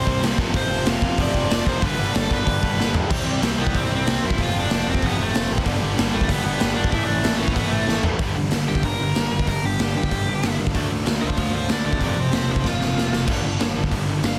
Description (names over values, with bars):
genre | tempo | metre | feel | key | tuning
punk rock | 189 BPM | 4/4 | straight | G major | A4 = 440 Hz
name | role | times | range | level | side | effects
overdriven electric guitar | melody | 0.0-14.4 s | A3 to F5 | -29 LUFS | equal | none
distorted electric guitar | riff | 0.0-14.4 s | F2 to D4 | -30 LUFS | equal | overdrive
distorted electric guitar | riff | 0.0-14.4 s | F2 to D4 | -32 LUFS | equal | none
distorted electric guitar | riff | 0.0-3.1, 5.7-14.4 s | F2 to E4 | -34 LUFS | equal | none
fuzz picked electric bass | bass | 0.1-14.4 s | F1 to F#2 | -30 LUFS | equal | overdrive
raw garage drum kit | drums | 0.1-14.3 s | crash cymbal, hi-hat, kick drum, snare drum, toms | -25 LUFS | equal | none
room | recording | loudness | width
little or no reverb | dense, heavily limited modern master | -21 LUFS | mono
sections
0.0-3.1 A section; 3.1-8.2 B section; 8.2-14.4 C section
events
drum fill 2.8-3.1, 7.9-8.2, 12.6-13.3; overdriven electric guitar solo 8.2-14.4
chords
0.4 F; 1.8 G; 3.1 C5; 4.4 F; 5.7 G; 6.9 A; 8.2 G; 10.7 D; 12.0 F; 13.3 G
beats
0.23 | 0.55 0.87 1.19 1.51 | 1.83 2.15 2.47 2.79 | 3.11 3.43 3.75 4.07 | 4.38 4.70 5.02 5.34 | 5.66 5.98 6.30 6.62 | 6.94 7.25 7.57 7.89 | 8.21 8.53 8.84 9.16 | 9.48 9.79 10.11 10.43 | 10.75 11.06 11.38 11.70 | 12.01 12.33 12.65 12.96 | 13.28 13.60 13.91 14.23